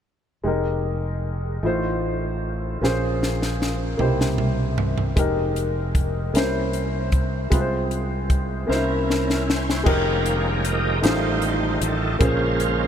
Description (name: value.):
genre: slow gospel.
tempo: 51 BPM (dotted quarters).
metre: 6/8.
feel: straight.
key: unclear.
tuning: A4 = 439 Hz.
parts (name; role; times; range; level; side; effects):
clear upright piano; accompaniment; 0.4-12.9 s; A2 to C5; -24 LUFS; equal; lush chorus.
fingered electric bass; bass; 0.4-12.9 s; F1 to C2; -26 LUFS; equal; none.
crisp fusion drum kit; drums; 2.8-12.8 s; crash cymbal, hi-hat, kick drum, snare drum, toms; -24 LUFS; equal; none.
bright tonewheel organ; sustained chords; 8.7-12.9 s; Db3 to Eb5; -25 LUFS; right 3 dB; fast rotary speaker, overdrive, chorus vibrato.
room: moderate huge ambient reverb, RT60 8.0 s.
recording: dreamy mix soaked in reverb.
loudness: -20 LUFS.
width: side -9 dB against mid.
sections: 0.4-9.9 A section; 9.9-12.9 B section.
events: drum fill 2.8-5.2, 8.7-9.9; tonewheel organ solo 9.9-12.9.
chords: 0.4 Fm11; 1.6 F7/A; 2.8 Bbm9; 4.0 C7; 5.2 Fm11; 6.3 C7b9; 7.5 Fm/C; 8.7 C7b9; 9.9 Fm11; 11.0 F7/A; 12.2 Bbm9.